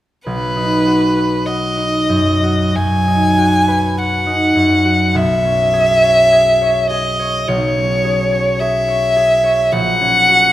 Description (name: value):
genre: classical, romantic duo for violin and harp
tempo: 45-54 BPM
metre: 4/4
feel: rubato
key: B major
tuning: A4 = 441 Hz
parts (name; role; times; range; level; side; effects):
- clear violin; melody; 0.3-10.5 s; B4 to G#5; -14 LUFS; equal; none
- concert harp; accompaniment; 0.3-10.5 s; A#1 to C#5; -16 LUFS; right 1 dB; none
room: moderate scoring stage reverb, RT60 1.6 s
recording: none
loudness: -12 LUFS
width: side -14 dB against mid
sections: 0.3-10.5 A section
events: none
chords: 0.3 B; 5.2 C#m7/B; 9.7 F#/A#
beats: | 0.27 1.47 2.77 3.99 | 5.16 6.33 7.48 8.61 | 9.73